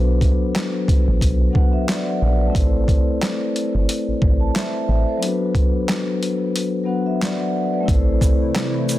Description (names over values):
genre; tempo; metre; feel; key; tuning
hip hop, boom-bap hip-hop; 90 BPM; 4/4; swing 58% on 16ths; A dorian; A4 = 440 Hz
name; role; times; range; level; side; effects
vibraphone with soft mallets; accompaniment; 0.0-9.0 s; F#3 to A5; -21 LUFS; left 2 dB; high-pass filter, low-pass filter
woody FM bass; bass; 0.0-8.3 s; G1 to B1; -19 LUFS; equal; none
boom bap sampler-style drum kit; drums; 0.2-9.0 s; handclaps, hi-hat, kick drum, shaker, snare drum; -19 LUFS; equal; none
hollow soft pad; sustained chords; 7.9-9.0 s; C3 to E4; -26 LUFS; equal; ensemble chorus, high-pass filter, low-pass filter
room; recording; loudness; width
little or no reverb; dense, heavily limited modern master; -17 LUFS; side -15 dB against mid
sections
0.0-7.9 A section; 7.9-9.0 B section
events
kick muted 6.5-7.9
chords
0.0 Bm; 2.5 Am; 5.2 Bm; 7.9 Am